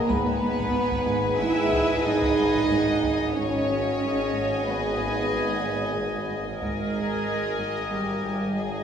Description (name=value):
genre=cinematic, suspense film score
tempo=92 BPM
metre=5/4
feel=straight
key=G# harmonic minor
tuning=A4 = 440 Hz
part: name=warm symphonic violin section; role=melody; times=0.0-8.8 s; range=G#5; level=-35 LUFS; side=left 2 dB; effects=none
part: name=warm symphonic violin section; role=second line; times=0.0-8.8 s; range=G4 to E5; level=-30 LUFS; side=left 3 dB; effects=none
part: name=clear symphonic viola section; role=accompaniment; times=0.0-8.8 s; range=G#4 to D#5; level=-29 LUFS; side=equal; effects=none
part: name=dark symphonic double bass section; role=bass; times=0.0-8.8 s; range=G#1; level=-36 LUFS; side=right 4 dB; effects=none
part: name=warm studio cello section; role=bass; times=0.0-8.8 s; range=G3 to E4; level=-27 LUFS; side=right 3 dB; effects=none
part: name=swarming drone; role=drone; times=0.0-8.8 s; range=G#1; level=-33 LUFS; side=equal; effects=built-in reverb
part: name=vibraphone with hard mallets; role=texture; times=0.0-8.8 s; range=A#5 to B5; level=-37 LUFS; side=equal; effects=none
part: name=warm symphonic cello section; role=riff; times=0.1-8.8 s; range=G#2 to G#3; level=-35 LUFS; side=equal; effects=none
part: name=taiko ensemble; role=drums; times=0.1-7.9 s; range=none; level=-36 LUFS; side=left 1 dB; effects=none
room=wet concert hall reverb, RT60 2.4 s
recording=recorded in a church or concert hall, studio reverb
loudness=-22 LUFS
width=side -8 dB against mid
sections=0.0-8.8 A section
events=none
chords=0.1 G#m; 6.6 D#sus4/G#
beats=| 0.09 0.74 1.40 2.05 2.70 | 3.35 4.00 4.66 5.31 5.96 | 6.61 7.26 7.92 8.57